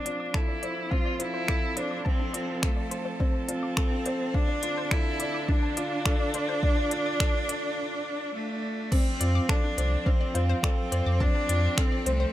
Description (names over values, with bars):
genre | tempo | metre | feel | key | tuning
piano and strings electronica | 105 BPM | 4/4 | straight | unclear | A4 = 441 Hz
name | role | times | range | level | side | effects
rich cello | melody | 0.0-12.3 s | A3 to F4 | -30 LUFS | equal | low-pass filter
bright string quartet | sustained chords | 0.0-12.3 s | D3 to A5 | -39 LUFS | right 2 dB | sidechain pumping, low-pass filter
felt-muted upright piano | riff | 0.0-12.3 s | C4 to D5 | -34 LUFS | equal | none
analog pluck | arpeggios | 0.1-12.3 s | D4 to D6 | -40 LUFS | left 4 dB | chorus, sidechain pumping, tape echo
organic electronic drum kit | drums | 0.1-12.2 s | crash cymbal, finger snaps, hi-hat | -32 LUFS | equal | overdrive
electronic kick drum | drums | 0.3-11.9 s | none | -26 LUFS | equal | overdrive
warm sub bass | bass | 9.2-12.3 s | C2 to F2 | -25 LUFS | equal | tube saturation, sidechain pumping
room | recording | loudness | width
light reverb, digital ambience | none | -25 LUFS | side -14 dB against mid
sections
0.0-8.9 A section; 8.9-12.3 B section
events
build-up 0.0-8.9; filter sweep on string quartet 0.0-8.9; break 7.8-8.9; drop 8.9-12.3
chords
0.0 F; 4.3 Dm; 8.9 F